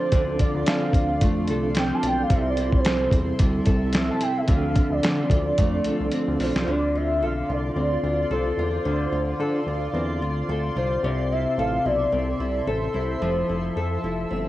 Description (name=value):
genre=indie pop, bedroom pop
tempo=110 BPM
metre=4/4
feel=swing 55% on 16ths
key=D minor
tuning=A4 = 437 Hz
part: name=warm velvety synth lead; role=melody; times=0.0-14.0 s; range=C5 to A5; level=-27 LUFS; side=right 1 dB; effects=lush chorus, cassette tape
part: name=mellow tonewheel organ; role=accompaniment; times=0.0-6.6 s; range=F3 to A4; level=-29 LUFS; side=right 4 dB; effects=chorus vibrato, fast rotary speaker, cassette tape
part: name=nylon-string guitar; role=accompaniment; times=0.0-14.5 s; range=C3 to A4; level=-27 LUFS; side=left 2 dB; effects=lush chorus, warbly pitch drift, cassette tape
part: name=granular cloud pad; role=sustained chords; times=0.0-14.5 s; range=F4 to E6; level=-33 LUFS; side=equal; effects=built-in reverb, cassette tape
part: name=fat analog bass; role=bass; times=0.1-14.5 s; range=F1 to D3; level=-28 LUFS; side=equal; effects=none
part: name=dusty soul sampler-style drum kit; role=drums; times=0.1-6.7 s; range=hi-hat, kick drum, snare drum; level=-22 LUFS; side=equal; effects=cassette tape
room=light reverb, digital ambience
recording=home recording on cassette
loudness=-21 LUFS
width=side -15 dB against mid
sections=0.0-6.7 A section; 6.7-14.5 B section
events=soft synth lead solo 0.0-6.7; drum fill 6.1-6.7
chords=0.0 Dm7; 2.3 C6; 4.5 Dm7; 11.0 C6; 13.2 Fmaj7